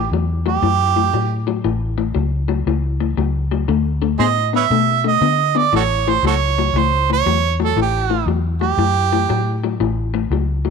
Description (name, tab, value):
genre	electric blues shuffle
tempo	118 BPM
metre	4/4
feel	swing 66% on 8ths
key	A mixolydian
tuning	A4 = 440 Hz
part	clear harmonica	melody	0.0-9.6 s	F#4 to E5	-18 LUFS	right 13 dB	overdrive
part	electric guitar through a small old amp	riff	0.0-10.7 s	A2 to B3	-21 LUFS	left 16 dB	spring reverb
part	vintage muted fingered electric bass	bass	0.0-10.7 s	A1 to D3	-20 LUFS	left 1 dB	none
room	light reverb, studio reverb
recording	1960s-style stereo with parts hard left and right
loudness	-15 LUFS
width	side -5 dB against mid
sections	0.0-10.7 A section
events	none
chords	0.0 A7; 3.7 D5; 5.7 A7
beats	0.12 0.63 1.14 | 1.65 2.16 2.67 3.18 | 3.69 4.20 4.71 5.22 | 5.73 6.24 6.75 7.26 | 7.77 8.28 8.79 9.29 | 9.80 10.31